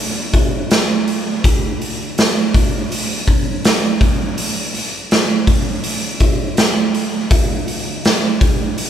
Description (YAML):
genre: rock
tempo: 82 BPM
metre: 4/4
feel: straight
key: none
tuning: none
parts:
  - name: raw garage drum kit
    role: drums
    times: 0.3-8.9 s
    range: hi-hat, kick drum, snare drum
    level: -14 LUFS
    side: equal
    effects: none
room: light reverb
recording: band playing live in one room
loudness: -14 LUFS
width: side -9 dB against mid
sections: 0.0-8.9 A section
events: none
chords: none